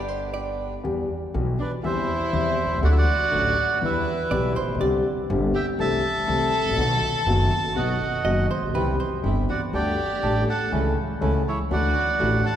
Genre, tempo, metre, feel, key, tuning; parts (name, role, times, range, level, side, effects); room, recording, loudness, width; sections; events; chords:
tango; 122 BPM; 4/4; rubato; E minor; A4 = 440 Hz
archtop guitar, miked and amplified; second line; 0.0-0.8, 4.3-9.3 s; B4 to D#5; -32 LUFS; right 3 dB
warm studio violin section; second line; 0.0-12.6 s; D4 to A4; -31 LUFS; left 2 dB
dark concert grand piano; accompaniment; 0.0-12.4 s; F#1 to A4; -26 LUFS; left 2 dB
bandoneon; stabs; 0.0-0.7, 8.7-12.4 s; B3 to A4; -33 LUFS; right 2 dB
upright bass; bass; 0.0-12.4 s; F#1 to E2; -26 LUFS; right 1 dB
bandoneon; melody; 1.6-12.6 s; B4 to A5; -26 LUFS; right 2 dB
wet church reverb, RT60 3.1 s; recorded in a church or concert hall; -21 LUFS; side -10 dB against mid
0.8-12.6 A section
0.0 G; 0.8 Em; 1.8 C/E; 2.8 D; 3.8 Em; 4.8 Csus2; 5.8 Am/C; 6.8 B; 8.7 C; 9.7 Dsus4; 10.7 A/C#; 11.7 Dadd9